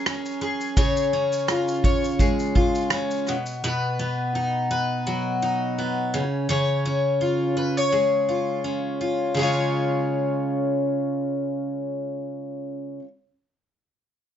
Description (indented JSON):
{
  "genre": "acoustic pop",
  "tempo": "84 BPM",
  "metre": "4/4",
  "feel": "swing 55% on 16ths",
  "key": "Db mixolydian",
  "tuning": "A4 = 441 Hz",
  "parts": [
    { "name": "picked twelve-string acoustic guitar", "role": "accompaniment", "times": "0.0-13.1 s", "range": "Cb3 to Db5", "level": "-22 LUFS", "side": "left 1 dB", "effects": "none" },
    { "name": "natural country drum kit", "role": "drums", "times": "0.1-3.6 s", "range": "kick drum, rim click, shaker", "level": "-23 LUFS", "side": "equal", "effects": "none" }
  ],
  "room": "moderate studio reverb, RT60 0.6 s",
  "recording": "nothing above 7.6 kHz",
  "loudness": "-21 LUFS",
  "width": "side -9 dB against mid",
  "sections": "0.0-9.3 A section; 9.3-12.2 B section",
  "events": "none",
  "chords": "0.0 Gbadd9; 0.8 Db; 3.3 Cb; 6.1 Db"
}